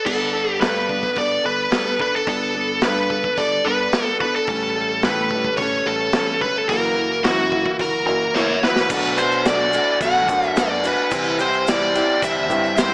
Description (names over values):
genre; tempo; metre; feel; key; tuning
folk rock and heartland rock; 109 BPM; 4/4; straight; unclear; A4 = 440 Hz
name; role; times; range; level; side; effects
biting lead guitar; melody; 0.0-12.9 s; F#4 to F#5; -22 LUFS; equal; overdrive, analog delay
picked plugged-in steel-string acoustic guitar; accompaniment; 0.1-12.9 s; F#2 to A4; -27 LUFS; equal; none
deep dub fingered electric bass; bass; 0.1-12.9 s; F#1 to A2; -32 LUFS; equal; none
vintage drum kit; drums; 0.1-12.9 s; crash cymbal, hi-hat, kick drum, snare drum; -26 LUFS; equal; none
overdriven reed electric piano; accompaniment; 8.9-12.9 s; D4 to C5; -34 LUFS; equal; none
tonewheel organ; sustained chords; 8.9-12.9 s; C4 to C5; -33 LUFS; equal; none
tube shaker; percussion; 8.9-12.9 s; none; -44 LUFS; equal; none
room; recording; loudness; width
light reverb; small speaker sound; -20 LUFS; mono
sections
0.1-8.9 A section; 8.9-12.9 B section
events
drum fill 8.4-8.9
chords
0.1 Gadd9; 4.5 A7; 6.7 F#7; 8.9 Bm7; 11.1 C